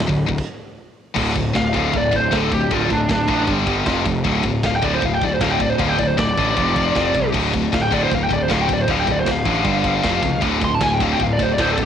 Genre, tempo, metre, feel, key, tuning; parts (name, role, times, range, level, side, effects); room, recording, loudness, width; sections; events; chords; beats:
heavy metal; 156 BPM; 4/4; straight; D minor; A4 = 441 Hz
heavy high-gain guitar; riff; 0.0-11.9 s; D2 to G3; -22 LUFS; left 8 dB; distortion, cassette tape
sludgy distorted guitar; riff; 0.0-11.9 s; D2 to G3; -25 LUFS; right 9 dB; overdrive, cassette tape
fuzz picked electric bass; bass; 0.0-11.9 s; D1 to C#2; -23 LUFS; right 1 dB; overdrive
tight metal drum kit; drums; 0.0-11.9 s; crash cymbal, hi-hat, kick drum, ride cymbal, snare drum; -25 LUFS; right 1 dB; cassette tape
high-gain lead guitar; melody; 1.6-11.9 s; D4 to C6; -21 LUFS; equal; distortion, cassette tape, analog delay
light reverb; home recording on cassette; -16 LUFS; side -8 dB against mid
0.0-1.2 A section; 1.2-11.9 B section
stop 0.4-1.2; lead electric guitar solo 1.2-11.9
0.0 N.C.; 1.2 Dm; 3.5 G5; 3.9 F5; 4.2 D5; 6.6 F5; 7.3 Dm; 9.6 G5; 10.0 F5; 10.4 D5
0.00 0.38 0.77 | 1.16 1.54 1.93 2.32 | 2.70 3.09 3.48 3.86 | 4.25 4.63 5.02 5.41 | 5.79 6.18 6.56 6.95 | 7.33 7.72 8.11 8.49 | 8.88 9.26 9.65 10.03 | 10.42 10.80 11.19 11.58